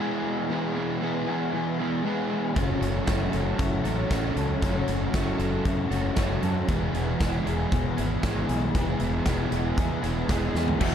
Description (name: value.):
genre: rock, shoegaze and dream pop.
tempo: 116 BPM.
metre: 4/4.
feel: straight.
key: E major.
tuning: A4 = 440 Hz.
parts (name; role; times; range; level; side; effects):
electric guitar through a small old amp; arpeggios; 0.0-10.9 s; B3 to A4; -36 LUFS; left 2 dB; analog chorus, slapback echo.
overdriven electric guitar; riff; 0.0-10.9 s; E2 to G#4; -30 LUFS; left 9 dB; lush chorus.
overdriven semi-hollow guitar; riff; 0.0-10.9 s; E3 to A4; -30 LUFS; right 8 dB; reverse reverb.
growling fingered electric bass; bass; 2.6-10.9 s; E1 to F#2; -29 LUFS; equal; overdrive.
big rock drum kit; drums; 2.6-10.9 s; crash cymbal, hi-hat, kick drum, snare drum, toms; -29 LUFS; equal; none.
cranked stack guitar; riff; 10.8-10.9 s; E2 to E3; -28 LUFS; right 1 dB; overdrive.
room: light reverb, small room ambience.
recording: none.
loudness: -24 LUFS.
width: side -8 dB against mid.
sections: 0.0-10.8 A section.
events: drum fill 10.6.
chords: 0.0 E; 2.6 F#m7; 6.7 E.